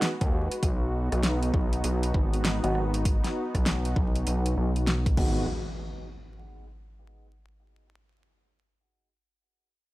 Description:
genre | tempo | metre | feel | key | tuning
glitch hop | 99 BPM | 4/4 | swing 63% on 16ths | G# minor pentatonic | A4 = 440 Hz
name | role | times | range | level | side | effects
warm analog pad | sustained chords | 0.0-5.5 s | G#3 to B4 | -33 LUFS | equal | chorus, sidechain pumping
warm grand piano | stabs | 0.0-5.4 s | F#3 to F#4 | -34 LUFS | right 1 dB | sidechain pumping, low-pass filter, tape echo
pop drum kit | drums | 0.0-5.3 s | crash cymbal, hi-hat, rim click, snare drum | -31 LUFS | equal | none
gritty driven synth bass | bass | 0.2-5.5 s | G#1 to D#2 | -27 LUFS | equal | tube saturation
electronic kick drum | drums | 0.2-5.3 s | none | -26 LUFS | equal | none
impact | sound effects | 5.2-7.6 s | none | -38 LUFS | equal | none
room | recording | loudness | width
little or no reverb | dry, gritty hardware recording, vinyl crackle | -24 LUFS | side -18 dB against mid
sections
0.0-5.5 A section; 5.5-7.9 B section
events
filter sweep on analog synth bass 0.0-5.5; filter sweep on grand piano 0.0-5.5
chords
0.0 G#m7; 5.5 N.C.

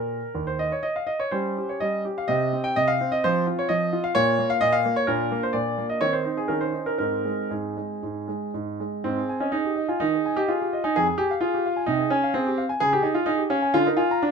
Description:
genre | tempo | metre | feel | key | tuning
classical-period piano sonatina | 115-131 BPM | 4/4 | rubato | Ab major | A4 = 440 Hz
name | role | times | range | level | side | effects
clear concert grand piano | solo | 0.0-14.3 s | Eb2 to Bb5 | -22 LUFS | right 1 dB | none
room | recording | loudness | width
light reverb | close, detailed microphones | -22 LUFS | side -6 dB against mid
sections
0.0-9.1 A section; 9.1-14.3 B section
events
none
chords
0.0 Eb5; 1.3 Eb13/G; 2.3 C5; 3.2 F5; 4.2 Bb5; 5.1 Bb; 6.0 Abadd11/Eb; 6.5 Bbmadd11/Eb; 7.0 Ab; 9.1 Ab5; 11.0 Fm; 12.8 Db; 13.8 Bb7/D

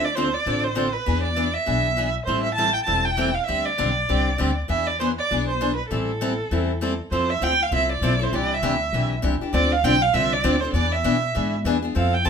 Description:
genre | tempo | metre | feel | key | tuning
acoustic string swing (jazz manouche) | 198 BPM | 4/4 | swing 60% on 8ths | unclear | A4 = 440 Hz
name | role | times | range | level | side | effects
warm violin | melody | 0.0-12.3 s | A4 to A5 | -23 LUFS | right 4 dB | none
picked steel-string acoustic guitar | accompaniment | 0.0-12.3 s | C3 to A4 | -25 LUFS | left 2 dB | none
upright bass | bass | 0.0-12.3 s | E1 to B2 | -26 LUFS | left 1 dB | none
room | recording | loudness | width
moderate studio reverb, RT60 0.6 s | minimal, uncompressed stereo recording | -20 LUFS | side -6 dB against mid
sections
0.0-7.1 A section; 7.1-12.3 B section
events
none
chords
0.0 Dm7; 1.1 E7; 2.3 Am7; 3.5 D7sus4; 4.7 E7; 5.9 Am7; 7.1 Fmaj7; 8.3 Cadd9; 9.5 Dm7; 10.7 E7

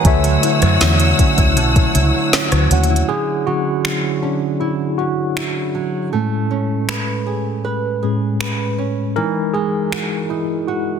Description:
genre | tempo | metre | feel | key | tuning
contemporary R&B | 79 BPM | 4/4 | straight | D lydian | A4 = 437 Hz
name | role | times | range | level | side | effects
tine electric piano | accompaniment | 0.0-11.0 s | A2 to G#5 | -19 LUFS | left 1 dB | medium stereo tremolo
nylon-string guitar | arpeggios | 0.0-11.0 s | D3 to B4 | -23 LUFS | right 6 dB | ping-pong delay
smooth R&B drum kit | drums | 0.0-10.1 s | finger snaps, hi-hat, kick drum, rim click, snare drum | -18 LUFS | equal | soft clipping on snare
rich studio string section | sustained chords | 0.1-3.1 s | C#5 to E6 | -21 LUFS | left 2 dB | none
vintage muted fingered electric bass | bass | 0.1-3.0 s | B1 to F#2 | -16 LUFS | left 1 dB | none
room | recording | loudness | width
light reverb | dense, heavily limited modern master | -15 LUFS | side -7 dB against mid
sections
0.0-3.1 A section; 3.1-11.0 B section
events
tine electric piano solo 3.1-11.0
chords
0.0 Dmaj9; 6.1 Amaj9; 9.2 Emaj9

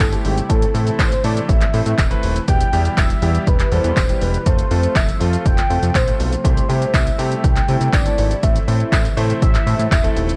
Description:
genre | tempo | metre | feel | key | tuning
dance-pop | 121 BPM | 4/4 | straight | A minor | A4 = 440 Hz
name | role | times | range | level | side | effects
warm velvety synth lead | melody | 0.0-10.1 s | G4 to G5 | -26 LUFS | equal | chorus, dub echo
soft supersaw | sustained chords | 0.0-10.4 s | C3 to G4 | -32 LUFS | equal | none
fat analog bass | bass | 0.0-10.3 s | D#1 to C3 | -22 LUFS | equal | sidechain pumping
punchy analog drum machine | drums | 0.0-10.4 s | handclaps, hi-hat, kick drum, shaker | -20 LUFS | equal | none
tambourine | percussion | 0.0-10.0 s | none | -40 LUFS | equal | none
warm concert grand piano | accompaniment | 0.1-10.3 s | G3 to C5 | -28 LUFS | equal | sidechain pumping
room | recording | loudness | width
little or no reverb | worn, warbling old tape, cassette tape, warbly pitch drift | -17 LUFS | mono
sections
0.0-10.4 A section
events
none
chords
0.5 Am; 2.5 Em; 4.5 F; 6.4 C6; 8.4 Am

